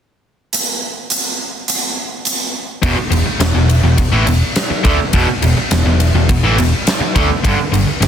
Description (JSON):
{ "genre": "hard rock", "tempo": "104 BPM", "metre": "4/4", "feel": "straight", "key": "E minor", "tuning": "A4 = 440 Hz", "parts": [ { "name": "huge arena drum kit", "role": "drums", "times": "0.5-8.1 s", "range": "hi-hat, kick drum, ride cymbal, snare drum", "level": "-16 LUFS", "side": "equal", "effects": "none" }, { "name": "distorted electric guitar", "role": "riff", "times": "2.8-8.1 s", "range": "E2 to A3", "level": "-18 LUFS", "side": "left 7 dB", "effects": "overdrive" }, { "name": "overdriven semi-hollow guitar", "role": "riff", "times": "2.8-8.1 s", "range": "E2 to A3", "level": "-19 LUFS", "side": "right 10 dB", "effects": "none" }, { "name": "hollow-body short-scale picked electric bass", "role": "bass", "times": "2.8-8.1 s", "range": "E1 to D2", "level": "-15 LUFS", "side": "equal", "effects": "none" } ], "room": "studio ambience", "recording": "dense, heavily limited modern master", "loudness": "-13 LUFS", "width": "side -9 dB against mid", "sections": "0.5-2.8 A section; 2.8-8.1 B section", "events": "none", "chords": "0.5 N.C.; 2.8 E5; 7.4 G5" }